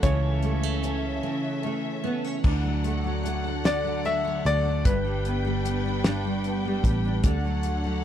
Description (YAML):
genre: six-eight pop ballad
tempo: 50 BPM (dotted quarters)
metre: 6/8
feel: straight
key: D major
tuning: A4 = 439 Hz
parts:
  - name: bright concert grand piano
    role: melody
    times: 0.0-6.0 s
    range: B4 to E5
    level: -29 LUFS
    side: left 3 dB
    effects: none
  - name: nylon-string guitar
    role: accompaniment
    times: 0.0-8.0 s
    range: G2 to D4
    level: -29 LUFS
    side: equal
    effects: double-tracked left and right
  - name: warm studio string section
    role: sustained chords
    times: 0.0-8.0 s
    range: C#3 to G5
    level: -33 LUFS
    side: left 1 dB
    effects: none
  - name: picked steel-string acoustic guitar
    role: arpeggios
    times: 0.0-3.0 s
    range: E3 to F#4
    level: -36 LUFS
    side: right 17 dB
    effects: none
  - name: vintage muted picked electric bass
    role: bass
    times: 0.0-8.0 s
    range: G1 to D2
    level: -28 LUFS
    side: equal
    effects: none
  - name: damped 70s drum kit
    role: drums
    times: 0.0-7.8 s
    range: crash cymbal, hi-hat, kick drum, snare drum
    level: -25 LUFS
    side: equal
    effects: none
room: little or no reverb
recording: dry, close 1970s-style studio recording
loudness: -23 LUFS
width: side -10 dB against mid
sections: 0.0-2.4 A section; 2.4-8.0 B section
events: break 1.2-2.4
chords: 0.0 A/C#; 2.4 D; 4.9 G; 7.2 D